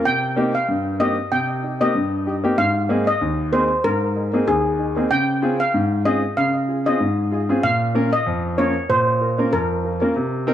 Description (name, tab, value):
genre	dancehall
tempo	95 BPM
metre	4/4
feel	swing 56% on 16ths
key	unclear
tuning	A4 = 435 Hz
part	warm grand piano	accompaniment	0.0-10.5 s	Eb2 to Bb4	-20 LUFS	equal	none
part	steel pan	melody	0.1-10.0 s	Ab4 to G5	-21 LUFS	equal	digital delay
room	light reverb, studio reverb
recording	dark, warm production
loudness	-18 LUFS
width	side -11 dB against mid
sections	0.0-10.2 A section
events	none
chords	0.1 Cm7; 2.6 Abadd9; 5.1 Dbmaj7; 7.6 Bbm